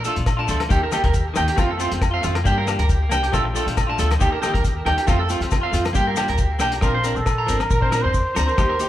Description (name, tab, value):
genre	highlife guitar band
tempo	137 BPM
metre	4/4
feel	straight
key	Bb major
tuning	A4 = 440 Hz
part	clean electric guitar	accompaniment	0.0-8.9 s	Eb3 to G4	-28 LUFS	left 5 dB	spring reverb
part	electric guitar at the edge of break-up	arpeggios	0.0-8.9 s	F4 to Bb5	-23 LUFS	right 3 dB	spring reverb, tape echo
part	cloth-damped thuddy drum kit	drums	0.0-8.9 s	hi-hat, kick drum, rim click	-23 LUFS	equal	none
part	maracas	percussion	0.0-8.9 s	none	-37 LUFS	left 9 dB	none
part	upright bass	bass	0.2-8.8 s	G1 to G2	-24 LUFS	equal	none
part	agogo bells	percussion	0.3-8.7 s	none	-31 LUFS	left 6 dB	none
part	trumpet with cup mute	melody	6.8-8.9 s	F4 to C5	-23 LUFS	equal	none
room	light reverb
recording	band playing live in one room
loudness	-18 LUFS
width	side -13 dB against mid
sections	0.0-6.8 A section; 6.8-8.9 B section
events	none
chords	0.0 Bbmaj7; 0.7 Eb; 1.6 F; 2.5 Gm; 3.3 Bbmaj7; 4.2 Eb; 5.1 F; 6.0 Gm; 6.8 Bbadd9